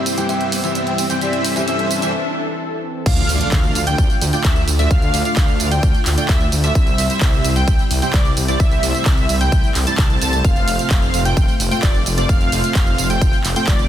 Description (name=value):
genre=EDM, festival progressive house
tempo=130 BPM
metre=4/4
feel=straight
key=D minor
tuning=A4 = 440 Hz
part: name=lush unison pad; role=sustained chords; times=0.0-13.9 s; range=C3 to A4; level=-28 LUFS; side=equal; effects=chorus, sidechain pumping
part: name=wide unison lead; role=arpeggios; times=0.0-13.8 s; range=D5 to A5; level=-23 LUFS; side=equal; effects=analog chorus, sidechain pumping, ping-pong delay
part: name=dense compressed supersaw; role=riff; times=0.0-13.8 s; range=G3 to A5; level=-24 LUFS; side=right 1 dB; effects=sidechain pumping, ping-pong delay
part: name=riser and impact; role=sound effects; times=0.0-4.9 s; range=none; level=-26 LUFS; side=equal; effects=none
part: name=big-room dance drum kit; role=drums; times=0.1-13.9 s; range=crash cymbal, handclaps, hi-hat, ride cymbal, tambourine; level=-23 LUFS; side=right 2 dB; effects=none
part: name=bright baby grand piano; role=accompaniment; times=0.2-2.1 s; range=E3 to G4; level=-27 LUFS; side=left 2 dB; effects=sidechain pumping, ping-pong delay
part: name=mellow hollow concert flute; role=melody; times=0.3-2.1 s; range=D5 to G5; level=-28 LUFS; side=equal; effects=ping-pong delay
part: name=detuned saw bass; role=bass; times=3.1-13.9 s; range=F1 to D2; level=-20 LUFS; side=equal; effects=sidechain pumping
part: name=electronic kick drum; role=drums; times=3.1-13.8 s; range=none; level=-16 LUFS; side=equal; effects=none
room=light reverb, digital ambience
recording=dense, heavily limited modern master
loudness=-14 LUFS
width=side -11 dB against mid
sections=0.0-3.1 A section; 3.1-13.9 B section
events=build-up 0.0-3.1; riser 0.0-2.1; filter sweep on analog synth lead 0.0-3.1; filter sweep on analog synth pad 0.0-3.1; break 2.1-3.1; drop 3.1-13.9; impact 3.1-4.9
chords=0.0 C; 3.1 Dm; 6.8 C; 10.4 F